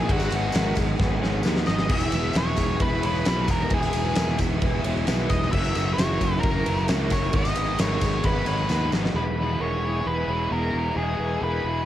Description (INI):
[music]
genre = rock, shoegaze and dream pop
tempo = 132 BPM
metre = 4/4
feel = straight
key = E lydian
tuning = A4 = 438 Hz
[part]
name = octave-fuzz lead guitar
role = melody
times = 0.0-11.9 s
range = F#4 to E5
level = -29 LUFS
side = left 1 dB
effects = distortion, analog delay
[part]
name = icy glass pad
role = sustained chords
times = 0.0-11.9 s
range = G#4 to D#6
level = -37 LUFS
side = left 2 dB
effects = chorus, built-in reverb, tremolo
[part]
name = mellow electric guitar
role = arpeggios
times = 0.0-11.9 s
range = B3 to C#5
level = -36 LUFS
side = right 5 dB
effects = lush chorus, analog delay
[part]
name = cranked stack guitar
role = riff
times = 0.0-11.9 s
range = E2 to G#3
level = -34 LUFS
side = equal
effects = none
[part]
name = raw garage guitar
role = riff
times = 0.0-11.9 s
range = E2 to B4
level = -32 LUFS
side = left 7 dB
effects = overdrive, lush chorus
[part]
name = raw garage guitar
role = riff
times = 0.0-11.9 s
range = F#2 to E4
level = -33 LUFS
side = right 7 dB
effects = overdrive, reverse reverb
[part]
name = fingered electric bass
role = bass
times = 0.0-11.9 s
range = E1 to D#2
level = -27 LUFS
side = equal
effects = none
[part]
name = huge arena drum kit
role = drums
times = 0.1-9.2 s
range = crash cymbal, kick drum, ride cymbal, snare drum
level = -26 LUFS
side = equal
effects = none
[part]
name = tambourine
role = percussion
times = 0.2-9.0 s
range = none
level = -42 LUFS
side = left 8 dB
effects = none
[sound]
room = studio ambience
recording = home recording on cassette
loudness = -21 LUFS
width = side -12 dB against mid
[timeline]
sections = 0.0-9.2 A section; 9.2-11.9 B section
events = drum fill 1.0-1.9, 8.7-9.2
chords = 0.1 G#m7; 1.9 Emaj7; 5.5 F#7; 7.3 G#m7; 9.2 Emaj7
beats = | 0.09 0.54 0.99 1.45 | 1.90 2.35 2.81 3.26 | 3.71 4.17 4.62 5.07 | 5.53 5.98 6.43 6.89 | 7.34 7.79 8.25 8.70 | 9.16 9.61 10.06 10.52 | 10.97 11.43